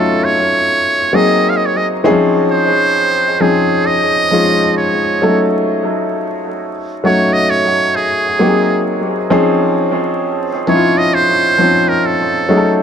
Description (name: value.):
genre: R&B.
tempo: 66 BPM.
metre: 4/4.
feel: swing 62% on 16ths.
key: Db major.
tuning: A4 = 440 Hz.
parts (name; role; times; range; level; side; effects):
trumpet with metal mute; melody; 0.0-12.8 s; Ab4 to F5; -15 LUFS; right 2 dB; dub echo.
warm grand piano; accompaniment; 0.0-12.8 s; Fb3 to A4; -13 LUFS; left 1 dB; dub echo.
room: moderate spring reverb, RT60 1.2 s.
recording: echo-heavy mix, vinyl crackle.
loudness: -11 LUFS.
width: side -8 dB against mid.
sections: 0.0-12.8 A section.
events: none.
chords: 0.0 Gbm6; 1.1 Ab9; 2.0 Dbmaj9; 5.2 Gbm6; 8.4 Ab9; 9.3 Dbmaj9.